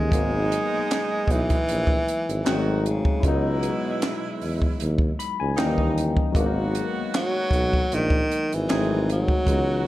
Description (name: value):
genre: R&B, neo-soul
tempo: 77 BPM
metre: 4/4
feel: swing 53% on 16ths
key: G# minor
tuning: A4 = 440 Hz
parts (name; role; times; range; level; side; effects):
- breathy tenor saxophone; melody; 0.0-9.9 s; B2 to G#3; -25 LUFS; equal; none
- barky tine electric piano; accompaniment; 0.0-9.9 s; D#3 to B5; -28 LUFS; left 4 dB; overdrive, phaser
- mellow tuba; bass; 0.0-9.9 s; G#1 to E2; -26 LUFS; equal; none
- edgy saxophone section; stabs; 0.1-9.9 s; A#2 to G#4; -34 LUFS; right 5 dB; tape echo
- compact cocktail drum kit; drums; 0.1-9.7 s; handclaps, hi-hat, kick drum, snare drum; -24 LUFS; equal; none
room: light reverb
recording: none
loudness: -21 LUFS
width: side -15 dB against mid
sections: 0.1-9.9 A section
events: tine electric piano fill 4.8-6.3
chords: 0.1 G#m7; 2.5 G#7b9; 3.2 C#m11; 5.6 D#7b9; 6.3 G#m7; 8.7 G#7b9